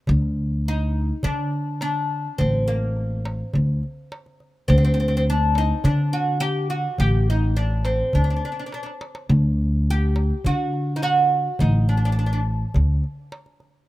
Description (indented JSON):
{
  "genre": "Arabic maqam ensemble",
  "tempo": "104 BPM",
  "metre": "4/4",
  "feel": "straight",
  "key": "D maqam hijaz",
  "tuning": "A4 = 436 Hz",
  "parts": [
    { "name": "upright bass", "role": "bass", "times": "0.1-13.0 s", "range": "A1 to D3", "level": "-21 LUFS", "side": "equal", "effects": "none" },
    { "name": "darbuka", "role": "percussion", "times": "0.1-13.7 s", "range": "none", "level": "-25 LUFS", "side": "equal", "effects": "none" },
    { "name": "oud", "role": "melody", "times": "0.7-12.4 s", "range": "Bb3 to G4", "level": "-25 LUFS", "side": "right 1 dB", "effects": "none" }
  ],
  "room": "studio ambience",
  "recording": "rough home demo mix",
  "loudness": "-19 LUFS",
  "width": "side -16 dB against mid",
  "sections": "0.1-13.9 A section",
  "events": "drum fill 8.7-9.3",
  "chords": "none"
}